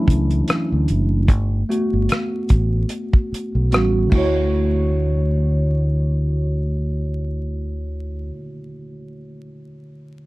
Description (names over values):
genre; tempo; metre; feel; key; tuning
R&B, neo-soul; 74 BPM; 4/4; swing 57% on 16ths; D major; A4 = 441 Hz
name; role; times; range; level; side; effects
tine electric piano; accompaniment; 0.0-10.3 s; D3 to C#5; -23 LUFS; right 1 dB; lush chorus
fingered electric bass; bass; 0.1-8.3 s; F#1 to D2; -20 LUFS; equal; none
damped 70s drum kit; drums; 0.1-4.3 s; crash cymbal, hi-hat, kick drum, rim click; -17 LUFS; equal; none
room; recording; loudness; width
light reverb; dark, warm production, vinyl crackle; -17 LUFS; side -20 dB against mid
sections
0.0-4.5 A section; 4.5-7.8 B section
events
tine electric piano solo 0.0-4.5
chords
0.0 Dmaj9; 1.3 Gmaj9; 3.7 A13; 4.1 Dmaj9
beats
0.47 | 1.28 2.09 2.90 3.71 | 4.53 5.33 6.15 6.96